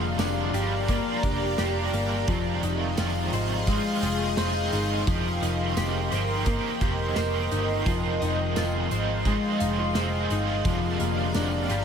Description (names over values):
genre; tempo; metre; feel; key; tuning
dream pop; 86 BPM; 4/4; straight; F dorian; A4 = 440 Hz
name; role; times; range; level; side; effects
overdriven electric guitar; accompaniment; 0.0-11.8 s; F2 to G4; -31 LUFS; right 4 dB; tremolo, analog chorus
granular cloud pad; sustained chords; 0.0-11.8 s; G4 to C6; -30 LUFS; right 1 dB; built-in reverb
semi-hollow electric guitar; arpeggios; 0.0-11.8 s; F3 to C5; -30 LUFS; left 5 dB; wide subtle chorus, digital delay
vintage muted picked electric bass; bass; 0.0-11.8 s; F1 to Ab1; -29 LUFS; right 1 dB; none
loose indie drum kit; drums; 0.2-11.8 s; hi-hat, kick drum, snare drum, tambourine; -30 LUFS; right 1 dB; none
glassy synth bell; texture; 8.2-11.0 s; Eb5 to F5; -42 LUFS; equal; none
room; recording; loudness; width
light reverb, small room ambience; none; -23 LUFS; side -7 dB against mid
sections
0.0-11.8 A section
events
none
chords
0.0 Gm7/F; 2.3 Fm7; 5.1 Cm7/F; 7.9 Fm7; 10.7 Gm7/F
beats
0.19 0.89 1.58 | 2.28 2.98 3.67 4.37 | 5.07 5.77 6.47 7.16 | 7.86 8.56 9.26 9.95 | 10.65 11.35